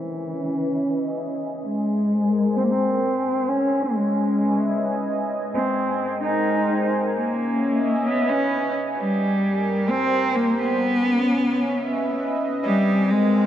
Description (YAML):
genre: IDM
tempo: 131 BPM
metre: 4/4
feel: straight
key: unclear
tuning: A4 = 440 Hz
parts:
  - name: rich cello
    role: melody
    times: 0.0-13.5 s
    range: Fb3 to Eb4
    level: -22 LUFS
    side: equal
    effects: tape echo
  - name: warm analog pad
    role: sustained chords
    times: 0.0-13.5 s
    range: G3 to Ab5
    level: -24 LUFS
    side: equal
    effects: chorus
room: moderate huge ambient reverb, RT60 3.8 s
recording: dark, warm production, low-pass filter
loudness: -20 LUFS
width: side -10 dB against mid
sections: 0.0-12.6 A section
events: filter sweep 0.0-12.6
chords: 0.0 Dbm7; 1.6 Abmaj7; 3.5 Dbm7; 5.3 Abmaj7; 7.1 Dbm7; 9.0 Abmaj7; 10.8 Dbm7; 12.6 Abmaj7